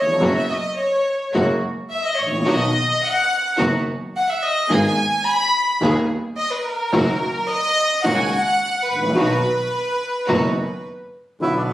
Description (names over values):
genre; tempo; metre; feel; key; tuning
tango; 107 BPM; 4/4; rubato; B major; A4 = 440 Hz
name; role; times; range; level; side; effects
clear chamber violin section; second line; 0.0-10.8 s; A#4 to B5; -20 LUFS; equal; none
dark upright piano; accompaniment; 0.0-11.7 s; D#1 to G#4; -22 LUFS; equal; none
rich studio string section; stabs; 0.2-10.5 s; G#3 to G#4; -26 LUFS; equal; none
clear double bass; bass; 0.2-11.7 s; F#1 to D#2; -24 LUFS; equal; none
bandoneon; melody; 11.4-11.7 s; B3 to E4; -21 LUFS; right 1 dB; none
room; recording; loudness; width
moderate studio reverb, RT60 0.8 s; recorded on a phone in the room, studio reverb; -17 LUFS; side -14 dB against mid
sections
0.0-11.4 A section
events
violin section solo 0.0-11.4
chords
0.2 F#sus4; 1.3 F#add9; 2.5 B; 4.7 G#madd9; 6.9 F#6; 9.2 B